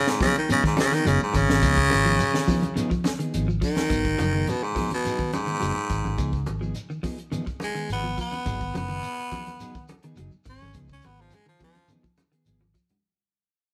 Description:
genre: afrobeat.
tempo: 105 BPM.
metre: 4/4.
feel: straight.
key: unclear.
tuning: A4 = 440 Hz.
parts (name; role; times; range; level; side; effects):
raspy baritone saxophone; melody; 0.0-11.9 s; G#2 to C#4; -27 LUFS; equal; none.
clean electric guitar; stabs; 0.1-12.7 s; E#3 to G#4; -35 LUFS; equal; none.
compact cocktail drum kit; drums; 0.1-13.0 s; hi-hat, kick drum, snare drum; -32 LUFS; equal; none.
shekere; percussion; 0.1-13.0 s; none; -40 LUFS; equal; none.
clean electric guitar; arpeggios; 0.2-12.9 s; D#3 to F#3; -34 LUFS; equal; none.
congas; percussion; 0.2-13.0 s; none; -34 LUFS; equal; none.
fingered electric bass; bass; 1.1-12.7 s; F#1 to C#2; -29 LUFS; equal; none.
room: moderate stone room reverb, RT60 1.4 s.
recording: band playing live in one room.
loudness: -25 LUFS.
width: mono.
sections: 0.0-13.0 A section.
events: baritone saxophone solo 0.0-13.0; fade-out 2.1-13.0; drum fill 12.6-13.0.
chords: 0.0 G#m7; 1.6 C#9; 3.9 G#m7; 6.2 C#9 (rootless); 8.5 G#m7; 10.7 C#9 (rootless).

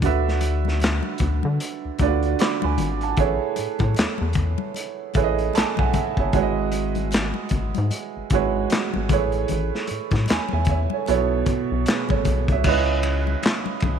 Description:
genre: R&B, neo-soul.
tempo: 76 BPM.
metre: 4/4.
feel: swing 60% on 16ths.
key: unclear.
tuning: A4 = 440 Hz.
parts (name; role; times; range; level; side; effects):
warm upright piano; accompaniment; 0.0-14.0 s; B2 to D6; -24 LUFS; right 11 dB; none.
rubbery square bass; bass; 0.0-14.0 s; G1 to D3; -24 LUFS; left 2 dB; none.
crunchy breakbeat drum kit; drums; 0.0-14.0 s; crash cymbal, handclaps, hi-hat, kick drum, ride cymbal, snare drum; -24 LUFS; left 2 dB; none.
congas; percussion; 0.0-14.0 s; none; -32 LUFS; left 14 dB; none.
room: light reverb.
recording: 1960s-style stereo with parts hard left and right.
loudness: -20 LUFS.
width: side -8 dB against mid.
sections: 0.0-12.7 A section; 12.7-14.0 B section.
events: upright piano fill 5.2-6.3.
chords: 0.0 D6; 3.2 Amaj9; 6.3 Emaj7/G#; 9.1 Amaj9; 11.1 B9sus4; 12.7 C#m9.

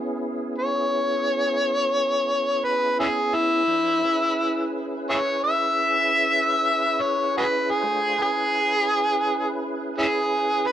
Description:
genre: blues.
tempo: 57 BPM (dotted quarters).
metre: 12/8.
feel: straight.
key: C# minor.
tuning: A4 = 440 Hz.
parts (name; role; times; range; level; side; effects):
tonewheel organ; sustained chords; 0.0-10.7 s; E#3 to B#4; -29 LUFS; right 2 dB; chorus vibrato, slow rotary speaker.
overdriven harmonica; melody; 0.6-10.7 s; C#4 to E5; -21 LUFS; equal; none.
room: moderate studio reverb, RT60 0.9 s.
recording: none.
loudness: -20 LUFS.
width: side -10 dB against mid.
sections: 0.0-10.7 A section.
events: harmonica solo 0.0-10.7.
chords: 0.0 C#m7.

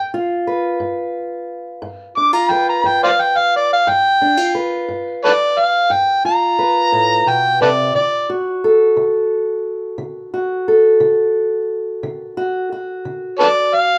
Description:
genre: acoustic country blues, solo or duo.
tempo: 59 BPM (dotted quarters).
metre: 12/8.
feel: straight.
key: G mixolydian.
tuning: A4 = 440 Hz.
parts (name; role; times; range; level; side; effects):
overdriven harmonica; melody; 0.0-14.0 s; A4 to D6; -16 LUFS; equal; none.
fingerpicked old ladder-braced acoustic guitar; accompaniment; 0.0-14.0 s; G2 to B4; -20 LUFS; equal; none.
room: moderate large studio reverb, RT60 0.8 s.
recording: band playing live in one room.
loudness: -16 LUFS.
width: mono.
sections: 0.0-14.0 A section.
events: harmonica solo 0.0-14.0.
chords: 0.0 G7; 7.9 D.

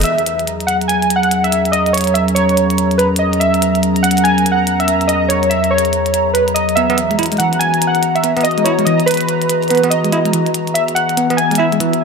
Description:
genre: IDM.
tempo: 143 BPM.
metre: 4/4.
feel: swing 62% on 16ths.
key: unclear.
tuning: A4 = 440 Hz.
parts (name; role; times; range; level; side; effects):
warbly lo-fi synth keys; melody; 0.0-12.0 s; B4 to G#5; -15 LUFS; right 1 dB; chorus, vintage 12-bit sampler grit, dub echo.
warbly tape-like pad; sustained chords; 0.0-12.0 s; E2 to A#4; -17 LUFS; left 1 dB; chorus, built-in reverb.
electronic hi-hat; drums; 0.0-12.0 s; none; -22 LUFS; left 1 dB; overdrive.
pulsing gated texture; texture; 0.5-12.0 s; A#5; -25 LUFS; right 3 dB; chorus, built-in reverb.
bell-like tine electric piano; arpeggios; 6.8-11.9 s; E3 to E4; -20 LUFS; right 2 dB; medium stereo tremolo, tape echo.
room: moderate lush hall reverb, RT60 2.2 s.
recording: none.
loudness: -12 LUFS.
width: side -5 dB against mid.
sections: 0.1-12.0 A section.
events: band accent 0.0.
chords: 0.1 F#7/E; 6.8 E.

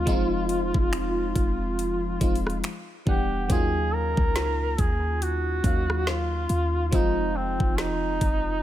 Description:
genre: contemporary R&B.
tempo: 70 BPM.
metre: 4/4.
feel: swing 58% on 16ths.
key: Eb dorian.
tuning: A4 = 440 Hz.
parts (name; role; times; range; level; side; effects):
warm duduk; melody; 0.0-8.6 s; C4 to Bb4; -29 LUFS; equal; none.
FM electric piano with soft pad layer; accompaniment; 0.0-8.6 s; E3 to F#5; -29 LUFS; equal; chorus.
clean 808-style bass; bass; 0.0-8.6 s; Fb1 to Eb2; -29 LUFS; equal; none.
trap drum kit; drums; 0.1-8.4 s; finger snaps, hi-hat, kick drum, rim click, snare drum; -26 LUFS; equal; none.
room: little or no reverb.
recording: none.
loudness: -23 LUFS.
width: side -12 dB against mid.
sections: 0.0-3.5 A section; 3.5-8.6 B section.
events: none.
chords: 0.1 Fm7; 2.6 Em9; 3.5 Ebm9; 6.9 Fm7.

